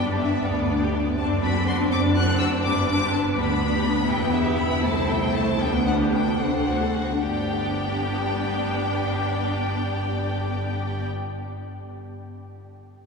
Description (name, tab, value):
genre	quick classical-period movement for string orchestra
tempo	69-83 BPM (dotted quarters)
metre	6/8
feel	rubato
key	G major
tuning	A4 = 440 Hz
part	rich studio violin section	melody	0.0-11.0 s	D5 to F#6	-29 LUFS	left 3 dB	none
part	rich studio violin section	second line	0.0-11.1 s	G3 to D5	-27 LUFS	left 2 dB	none
part	rich studio viola section	accompaniment	0.0-11.0 s	A3 to E4	-27 LUFS	right 1 dB	none
part	bright studio cello section	bass	0.0-11.0 s	C2 to G2	-28 LUFS	right 1 dB	none
part	rich studio double bass section	bass	0.0-11.0 s	E1 to D2	-30 LUFS	right 1 dB	none
room	wet cathedral reverb, RT60 5.2 s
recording	heard from further back in the room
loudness	-21 LUFS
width	side -4 dB against mid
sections	0.0-7.2 A section; 7.2-10.5 B section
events	slowing down 3.4-7.2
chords	0.0 G; 1.2 D7/F#; 2.6 G; 4.1 Em; 4.8 Am/C; 5.6 G/D; 6.4 D7; 7.2 G